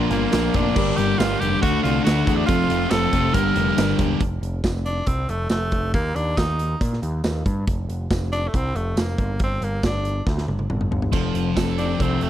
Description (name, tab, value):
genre	classic rock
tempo	139 BPM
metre	4/4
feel	straight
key	unclear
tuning	A4 = 442 Hz
part	mellow reed electric piano	accompaniment	0.0-4.1, 11.1-12.3 s	C4 to Bb4	-29 LUFS	right 6 dB	none
part	bright tonewheel organ	sustained chords	0.0-4.2 s	none	barely audible	none	none
part	overdriven electric guitar	riff	0.0-4.2 s	F2 to D4	-26 LUFS	equal	none
part	sludgy distorted guitar	riff	0.0-4.2, 11.1-12.3 s	F2 to D4	-24 LUFS	left 9 dB	overdrive
part	tight distorted guitar	riff	0.0-4.2, 11.1-12.3 s	F2 to A4	-29 LUFS	right 11 dB	distortion
part	growling picked electric bass	bass	0.0-12.3 s	E1 to Bb2	-25 LUFS	equal	overdrive
part	raspy tenor saxophone	melody	0.1-12.3 s	A3 to Bb4	-26 LUFS	equal	none
part	big rock drum kit	drums	0.1-12.3 s	crash cymbal, hi-hat, kick drum, snare drum, splash cymbal, tambourine, toms	-25 LUFS	equal	none
room	small room ambience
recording	dry, close 1970s-style studio recording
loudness	-19 LUFS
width	side -11 dB against mid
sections	0.0-4.2 A section; 4.2-12.3 B section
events	drum fill 10.3-11.1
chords	0.0 Bb; 1.6 D; 2.5 F; 3.3 Gm; 4.2 F; 5.9 N.C.; 7.7 F; 9.2 G5; 11.1 F